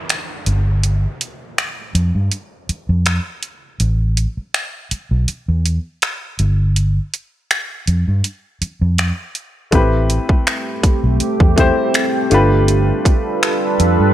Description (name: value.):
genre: contemporary R&B.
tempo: 81 BPM.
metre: 4/4.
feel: swing 54% on 16ths.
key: unclear.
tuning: A4 = 440 Hz.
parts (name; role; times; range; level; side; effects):
downlifter; sound effects; 0.0-3.8 s; none; -35 LUFS; equal; none.
trap drum kit; drums; 0.1-14.0 s; finger snaps, hi-hat, kick drum; -17 LUFS; equal; vintage 12-bit sampler grit.
vintage muted fingered electric bass; bass; 0.5-14.1 s; G1 to G2; -15 LUFS; equal; none.
warm baby grand piano; accompaniment; 9.7-14.1 s; A3 to C5; -19 LUFS; left 2 dB; none.
deep dark ambient pad; sustained chords; 10.6-14.1 s; G3 to B4; -18 LUFS; right 2 dB; chorus, built-in reverb.
room: little or no reverb.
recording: none.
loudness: -15 LUFS.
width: side -12 dB against mid.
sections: 0.0-14.1 A section.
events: break 0.0-9.7.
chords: 0.5 Fsus2/G; 3.8 Asus2; 6.4 Fsus2/G; 9.7 Am9; 12.3 G9.